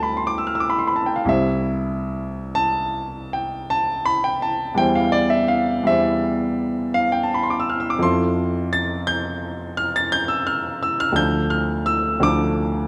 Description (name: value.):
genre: classical, romantic nocturne for solo piano.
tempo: 44-59 BPM (dotted quarters).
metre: 9/8.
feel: rubato.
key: C major.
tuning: A4 = 442 Hz.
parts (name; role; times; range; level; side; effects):
warm baby grand piano; solo; 0.0-12.9 s; C2 to A6; -21 LUFS; equal; none.
room: moderate scoring stage reverb, RT60 1.8 s.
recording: none.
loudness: -21 LUFS.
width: mono.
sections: 0.0-12.9 A section.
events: none.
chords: 0.0 G7/D; 1.3 C; 4.8 C/E; 8.0 Fmaj7; 11.2 Dm.